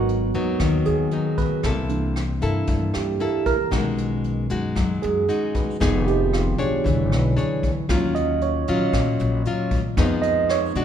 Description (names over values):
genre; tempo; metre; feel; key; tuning
bossa nova; 115 BPM; 4/4; straight; Eb minor; A4 = 440 Hz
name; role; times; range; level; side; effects
barky tine electric piano; accompaniment; 0.0-10.8 s; D3 to Eb5; -24 LUFS; right 7 dB; overdrive, phaser
nylon-string guitar; accompaniment; 0.0-10.8 s; G2 to Db5; -24 LUFS; left 4 dB; none
upright bass; bass; 0.0-10.8 s; E1 to Cb3; -25 LUFS; left 1 dB; none
jazz brush drum kit; drums; 0.1-10.8 s; hi-hat, kick drum, rim click; -27 LUFS; left 1 dB; none
room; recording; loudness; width
moderate recital hall reverb, RT60 1.9 s; recorded in a church or concert hall; -19 LUFS; side -9 dB against mid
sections
0.0-10.8 A section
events
tine electric piano solo 0.0-10.8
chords
0.0 Abm7; 1.6 C13; 3.7 B6; 5.8 Fm7b5; 6.8 E13; 7.9 Ebm9; 10.0 Fm7b5